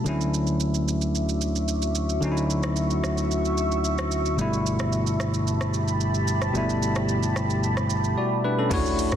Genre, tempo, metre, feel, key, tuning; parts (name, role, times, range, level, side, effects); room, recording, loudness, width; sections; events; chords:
amapiano; 111 BPM; 4/4; straight; A4 = 440 Hz
bell-like tine electric piano; accompaniment; 0.0-9.2 s; B2 to D5; -25 LUFS; left 1 dB
deep dark ambient pad; sustained chords; 0.0-9.2 s; F#4 to E6; -30 LUFS; right 1 dB; chorus, built-in reverb, sidechain pumping
fingered electric bass; bass; 0.1-8.1 s; G1 to D2; -27 LUFS; equal
afro-pop drum kit; drums; 0.1-9.2 s; crash cymbal, hi-hat, kick drum, rim click, shaker; -33 LUFS; right 3 dB; soft clipping on snare
hollow log drum bass; bass; 8.7-9.2 s; D2; -28 LUFS; equal
impact; sound effects; 8.7-9.2 s; -32 LUFS; right 2 dB
moderate scoring stage reverb, RT60 1.6 s, digital ambience; dense, heavily limited modern master; -22 LUFS; side -9 dB against mid
0.0-8.7 A section
impact 8.7-9.2
0.1 Dmaj9; 4.4 G69